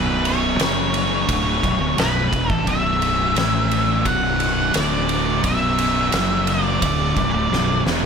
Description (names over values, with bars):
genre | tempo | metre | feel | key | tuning
stoner and doom metal | 87 BPM | 4/4 | straight | B minor | A4 = 440 Hz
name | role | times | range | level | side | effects
octave-fuzz lead guitar | melody | 0.0-7.8 s | B4 to F#5 | -22 LUFS | equal | distortion, ping-pong delay
thick fuzz guitar | riff | 0.0-8.0 s | B1 to A3 | -24 LUFS | left 10 dB | distortion
thick fuzz guitar | riff | 0.0-8.1 s | B1 to A3 | -25 LUFS | right 13 dB | distortion
fuzz fingered electric bass | bass | 0.0-8.1 s | B0 to A1 | -26 LUFS | equal | overdrive
oversized low-tuned drum kit | drums | 0.3-8.0 s | kick drum, ride cymbal, snare drum | -23 LUFS | equal | none
room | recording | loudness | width
little or no reverb | none | -17 LUFS | side -6 dB against mid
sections
0.0-8.1 A section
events
drum fill 7.5-8.1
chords
0.0 B5; 0.6 F#5; 1.3 Bm; 3.4 A5; 4.1 B5; 4.7 D5; 5.4 B5; 6.1 F#5; 6.8 Bm